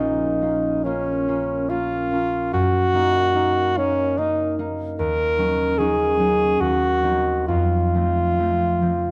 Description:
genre	classical, romantic duo for alto saxophone and harp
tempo	67-76 BPM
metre	3/4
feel	rubato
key	Bb minor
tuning	A4 = 440 Hz
part	bright alto saxophone	melody	0.0-9.1 s	Db4 to Bb4	-23 LUFS	equal	none
part	concert harp	accompaniment	0.0-9.1 s	Bb1 to F4	-25 LUFS	equal	none
room	moderate scoring stage reverb, RT60 1.6 s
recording	close, detailed microphones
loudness	-21 LUFS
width	mono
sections	0.0-9.1 A section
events	none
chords	0.0 Bbm; 2.5 Ebm/Gb; 5.0 Ebm7; 6.6 Cdim/Eb; 7.5 F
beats	0.83 1.69 | 2.54 3.35 4.18 | 4.99 5.79 6.62 | 7.49 8.38

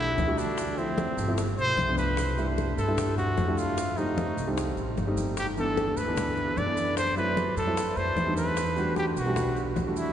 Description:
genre	Afro-Cuban jazz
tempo	150 BPM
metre	4/4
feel	straight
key	E minor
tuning	A4 = 440 Hz
part	breathy trumpet	melody	0.0-10.1 s	C4 to D5	-29 LUFS	equal	none
part	warm grand piano	accompaniment	0.0-10.1 s	E3 to F#5	-31 LUFS	right 1 dB	none
part	upright bass	bass	0.0-10.1 s	G1 to G2	-31 LUFS	equal	none
part	bongos	percussion	0.2-10.1 s	none	-37 LUFS	left 4 dB	none
part	congas	percussion	0.2-10.0 s	none	-37 LUFS	left 1 dB	none
part	maracas	percussion	0.2-10.1 s	none	-46 LUFS	right 6 dB	none
room	wet cathedral reverb, RT60 7.5 s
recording	recorded in a church or concert hall, nothing above 10.3 kHz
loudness	-25 LUFS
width	side -10 dB against mid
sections	0.0-10.1 A section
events	none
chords	0.0 Em11; 0.6 Dm7; 1.4 G9; 2.2 C69; 3.8 F9; 5.4 G69; 7.0 F#m7b5; 7.8 F13; 8.6 Em11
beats	0.18 | 0.58 0.98 1.38 1.78 | 2.18 2.58 2.98 3.38 | 3.77 4.17 4.58 4.97 | 5.37 5.77 6.17 6.57 | 6.97 7.37 7.77 8.17 | 8.57 8.97 9.37 9.77

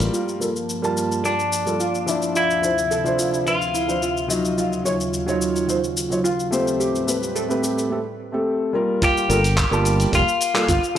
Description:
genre	sunset chillout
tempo	108 BPM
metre	4/4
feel	straight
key	G dorian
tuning	A4 = 440 Hz
part	dark concert grand piano	accompaniment	0.0-11.0 s	F3 to A5	-23 LUFS	moving between left 3 dB and right 4 dB	auto-pan, analog delay
part	airy breathy pad	sustained chords	0.0-7.9 s	D2 to A5	-29 LUFS	equal	chorus
part	fingered electric bass	bass	0.0-0.1, 9.3-10.8 s	F1 to A1	-21 LUFS	equal	tube saturation
part	dusty soul sampler-style drum kit	drums	0.0-10.9 s	handclaps, hi-hat, shaker	-28 LUFS	left 2 dB	none
part	steel pan	arpeggios	0.1-10.8 s	E4 to Db5	-27 LUFS	right 2 dB	low-pass filter, analog delay
part	semi-hollow electric guitar	melody	1.3-4.3, 9.0-11.0 s	D4 to G4	-22 LUFS	left 2 dB	tape echo
part	electronic kick drum	drums	9.0-10.8 s	none	-23 LUFS	equal	none
room	light reverb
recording	dry, gritty hardware recording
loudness	-19 LUFS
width	side -10 dB against mid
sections	0.1-9.0 A section; 9.0-11.0 B section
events	filter sweep on analog synth pad 0.1-9.0; filter sweep on steel pan 0.1-9.0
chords	0.1 Gm9; 2.4 Dm9; 4.6 Ebm9; 6.8 Am9; 9.0 Gm9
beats	| 0.13 0.69 1.24 1.80 | 2.35 2.91 3.46 4.02 | 4.58 5.13 5.69 6.24 | 6.80 7.35 7.91 8.46 | 9.02 9.57 10.13 10.69

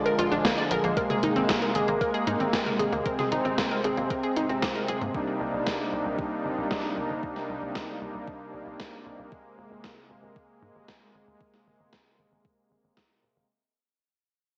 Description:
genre	synthwave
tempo	115 BPM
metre	4/4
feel	straight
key	unclear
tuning	A4 = 441 Hz
part	soft supersaw	sustained chords	0.0-13.5 s	C3 to Eb4	-32 LUFS	equal	sidechain pumping, cassette tape
part	analog pluck	arpeggios	0.1-5.1 s	Bb3 to D5	-31 LUFS	equal	chorus, cassette tape, tape echo
part	gated 80s digital drum machine	drums	0.1-13.1 s	hi-hat, snare drum, toms	-33 LUFS	equal	gated reverb, gated reverb snare, overdrive, cassette tape
part	tight sequencer bass	bass	0.2-13.5 s	Eb1 to Ab2	-38 LUFS	equal	sidechain pumping
part	electronic kick drum	drums	0.4-13.1 s	none	-39 LUFS	equal	overdrive, cassette tape
room	wet digital room reverb, RT60 1.2 s, digital ambience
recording	home recording on cassette, small speaker sound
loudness	-28 LUFS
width	mono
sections	0.0-13.5 A section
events	fade-out 0.0-13.5; filter sweep on analog synth bass 0.0-13.5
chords	0.0 Bb; 1.0 Abadd9; 5.1 Cm7; 9.3 Abadd9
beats	0.45 | 0.97 1.49 2.01 2.54 | 3.06 3.58 4.10 4.62 | 5.14 5.67 6.19 6.71 | 7.23 7.75 8.27 8.80 | 9.32 9.84 10.36 10.88 | 11.40 11.93 12.45 12.97

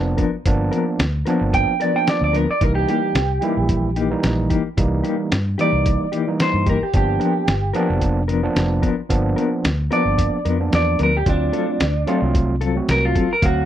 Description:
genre	straight-eighth soul blues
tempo	111 BPM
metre	4/4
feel	straight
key	unclear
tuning	A4 = 441 Hz
part	electric guitar through a small old amp	melody	0.0-13.7 s	D4 to G5	-22 LUFS	right 2 dB	none
part	overdriven tine electric piano	accompaniment	0.0-13.7 s	E3 to E#5	-23 LUFS	right 3 dB	none
part	vintage muted fingered electric bass	bass	0.0-13.7 s	F1 to G2	-21 LUFS	equal	none
part	mellow electric guitar	stabs	0.2-13.3 s	E3 to A#4	-23 LUFS	left 7 dB	tremolo
part	lo-fi sampler-style drum kit	drums	0.2-13.6 s	hi-hat, kick drum, snare drum	-22 LUFS	equal	none
room	digital ambience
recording	dry, close 1970s-style studio recording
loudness	-17 LUFS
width	side -11 dB against mid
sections	0.0-13.7 A section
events	none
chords	0.0 G7#9; 2.6 C7#9; 6.9 G7#9; 11.3 D7#9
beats	| 0.45 0.99 1.53 2.07 | 2.61 3.15 3.69 4.23 | 4.78 5.32 5.86 6.40 | 6.94 7.48 8.02 8.56 | 9.10 9.64 10.18 10.72 | 11.27 11.81 12.35 12.89 | 13.43

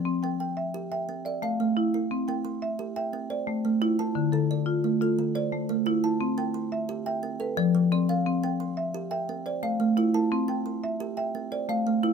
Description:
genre	southern african traditional, mbira-style interlocking cycle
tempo	117 BPM (dotted quarters)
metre	12/8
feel	straight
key	C major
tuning	A4 = 441 Hz
part	kalimba	arpeggios	0.0-12.1 s	D3 to C6	-28 LUFS	right 8 dB	none
part	marimba with medium hard mallets	arpeggios	0.0-12.1 s	D3 to G5	-27 LUFS	left 4 dB	none
room	light reverb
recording	minimal, uncompressed stereo recording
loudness	-25 LUFS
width	side -6 dB against mid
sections	0.0-2.1 A section; 2.1-12.1 B section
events	none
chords	0.1 C; 1.1 Am; 2.1 C; 3.1 Am; 4.2 Dm; 5.2 Am; 6.2 C; 7.2 F; 8.3 C; 9.3 Am; 10.3 C; 11.3 Am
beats	| 0.06 0.57 1.08 1.59 | 2.11 2.62 3.13 3.65 | 4.16 4.67 5.18 5.70 | 6.21 6.72 7.23 7.75 | 8.26 8.77 9.29 9.80 | 10.31 10.83 11.34 11.86

